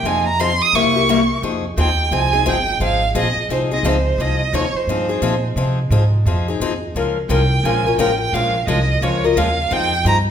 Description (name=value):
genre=acoustic string swing (jazz manouche)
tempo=174 BPM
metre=4/4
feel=swing 62% on 8ths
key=F minor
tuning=A4 = 440 Hz
part: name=rich violin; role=melody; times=0.0-10.2 s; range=C5 to Eb6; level=-19 LUFS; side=right 4 dB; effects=none
part: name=upright bass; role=bass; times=0.0-10.3 s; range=G1 to C3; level=-20 LUFS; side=right 1 dB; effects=none
part: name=picked steel-string acoustic guitar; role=accompaniment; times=0.1-10.2 s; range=C3 to Bb4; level=-20 LUFS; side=left 4 dB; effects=none
room=wet recital hall reverb, RT60 1.6 s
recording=recorded in a church or concert hall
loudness=-15 LUFS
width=side -8 dB against mid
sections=0.0-1.4 A section; 1.4-10.3 B section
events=violin solo 0.0-1.4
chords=0.0 Fm7; 0.7 C7b9; 1.4 Fm9; 7.0 Bbm9; 9.7 Fm9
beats=| 0.05 0.39 0.74 1.08 | 1.43 1.77 2.12 2.46 | 2.81 3.15 3.50 3.84 | 4.19 4.53 4.88 5.22 | 5.57 5.92 6.26 6.61 | 6.95 7.30 7.64 7.99 | 8.33 8.68 9.02 9.37 | 9.71 10.06